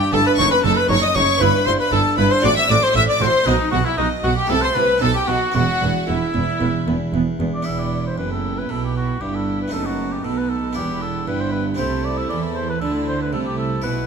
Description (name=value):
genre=classical, baroque-style concerto movement with solo episodes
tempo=116 BPM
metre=4/4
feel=straight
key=E minor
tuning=A4 = 440 Hz
part: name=mellow oboe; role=melody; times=0.0-14.1 s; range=D#4 to E5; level=-23 LUFS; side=left 2 dB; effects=none
part: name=warm chamber violin section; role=melody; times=0.0-14.1 s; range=D#5 to E6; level=-25 LUFS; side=left 5 dB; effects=none
part: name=harpsichord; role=accompaniment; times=0.0-14.1 s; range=E2 to F#4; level=-26 LUFS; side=right 1 dB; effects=none
part: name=warm symphonic violin section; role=second line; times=0.1-14.1 s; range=D#4 to E5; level=-24 LUFS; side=equal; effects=none
part: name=rich chamber viola section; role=accompaniment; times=0.1-14.1 s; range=A3 to F#4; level=-29 LUFS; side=right 3 dB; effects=none
part: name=warm chamber cello section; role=bass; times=0.1-14.1 s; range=E2 to E3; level=-25 LUFS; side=right 4 dB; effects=none
part: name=warm chamber double bass section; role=bass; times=0.1-14.1 s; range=E1 to E2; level=-25 LUFS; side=right 4 dB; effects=none
room=moderate scoring stage reverb, RT60 1.6 s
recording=close, detailed microphones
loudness=-17 LUFS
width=side -6 dB against mid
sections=0.0-7.7 A section; 7.7-14.1 B section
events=none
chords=0.4 D#dim/F#; 1.4 Em/G; 2.4 F#dim/A; 3.5 B5; 4.5 Am/C; 5.0 B; 5.5 E5; 7.7 Em; 9.7 B7/F#; 10.8 Em; 11.8 Am/C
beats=0.38 0.89 | 1.41 1.92 2.43 2.95 | 3.46 3.98 4.49 5.01 | 5.54 6.08 6.60 7.13 | 7.66 8.18 8.69 9.21 | 9.72 10.24 10.75 11.27 | 11.78 12.30 12.81 13.33 | 13.85